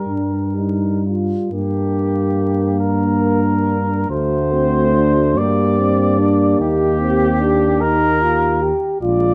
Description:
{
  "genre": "classical, hymn-like piece for brass band",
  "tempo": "48 BPM (dotted quarters)",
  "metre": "6/8",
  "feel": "uneven beats, rubato",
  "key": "G minor",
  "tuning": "A4 = 440 Hz",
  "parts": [
    { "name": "warm flugelhorn", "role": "melody", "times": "0.0-9.3 s", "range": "G4 to D5", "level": "-23 LUFS", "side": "equal", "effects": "none" },
    { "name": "dark trombone", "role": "accompaniment", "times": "0.0-9.3 s", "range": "G3 to Bb3", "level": "-26 LUFS", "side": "equal", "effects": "none" },
    { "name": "warm euphonium", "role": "accompaniment", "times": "0.0-9.3 s", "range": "A3 to G4", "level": "-24 LUFS", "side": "equal", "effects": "none" },
    { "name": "mellow French horn section", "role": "second line", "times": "0.1-9.3 s", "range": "D4 to G4", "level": "-26 LUFS", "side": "equal", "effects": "none" },
    { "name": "mellow tuba", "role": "bass", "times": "0.1-9.3 s", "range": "Bb1 to G2", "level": "-22 LUFS", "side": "equal", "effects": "none" }
  ],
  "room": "light reverb",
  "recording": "close, detailed microphones, vinyl crackle",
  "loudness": "-17 LUFS",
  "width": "mono",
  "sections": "0.0-1.5 A section; 1.5-9.3 B section",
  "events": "none",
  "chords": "0.0 Gm; 4.1 D7; 5.4 Gm; 6.6 Eb"
}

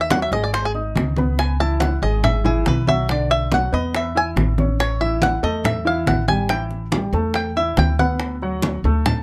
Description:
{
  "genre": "Afro-Cuban jazz",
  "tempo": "141 BPM",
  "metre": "4/4",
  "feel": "straight",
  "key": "A major",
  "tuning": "A4 = 444 Hz",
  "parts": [
    { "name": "bluegrass banjo", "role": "melody", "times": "0.0-9.2 s", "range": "G#4 to A5", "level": "-24 LUFS", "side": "equal", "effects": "none" },
    { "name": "warm baby grand piano", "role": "accompaniment", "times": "0.0-9.2 s", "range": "D3 to E6", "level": "-27 LUFS", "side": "equal", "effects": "none" },
    { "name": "upright bass", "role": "bass", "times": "0.0-9.2 s", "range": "G#1 to E2", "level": "-24 LUFS", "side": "equal", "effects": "none" },
    { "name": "bongos", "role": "percussion", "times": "0.1-9.2 s", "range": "none", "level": "-30 LUFS", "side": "equal", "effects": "none" },
    { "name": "congas", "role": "percussion", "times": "0.1-9.2 s", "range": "none", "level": "-26 LUFS", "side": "equal", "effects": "none" }
  ],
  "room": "light reverb",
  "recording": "faint mains hum",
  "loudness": "-20 LUFS",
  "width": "mono",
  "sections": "0.0-9.2 A section",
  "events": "five-string banjo solo 0.0-9.2",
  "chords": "0.0 G#7(no3); 0.5 G#5; 1.4 C#m7; 3.1 Bm; 3.9 E5; 4.8 A; 6.5 Asus2; 8.2 D6"
}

